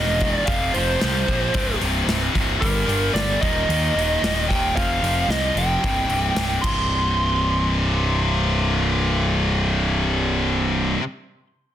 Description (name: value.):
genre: hard rock.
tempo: 112 BPM.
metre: 4/4.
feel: straight.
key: C minor.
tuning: A4 = 439 Hz.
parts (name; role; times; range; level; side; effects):
biting lead guitar; melody; 0.0-10.9 s; Bb4 to C6; -24 LUFS; right 2 dB; overdrive, tape echo.
heavy high-gain guitar; riff; 0.0-11.0 s; C2 to G3; -23 LUFS; left 2 dB; distortion.
fuzz picked electric bass; bass; 0.0-10.9 s; C1 to Eb2; -23 LUFS; equal; overdrive.
big rock drum kit; drums; 0.2-6.8 s; crash cymbal, hi-hat, kick drum, snare drum; -27 LUFS; equal; none.
room: light reverb, small room ambience.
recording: dense, heavily limited modern master.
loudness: -18 LUFS.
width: side -11 dB against mid.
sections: 0.0-6.9 A section; 6.9-11.2 B section.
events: drum fill 6.6.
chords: 0.5 F5; 1.5 C5; 2.6 Gm; 3.4 Eb5; 4.8 F5; 5.8 C5.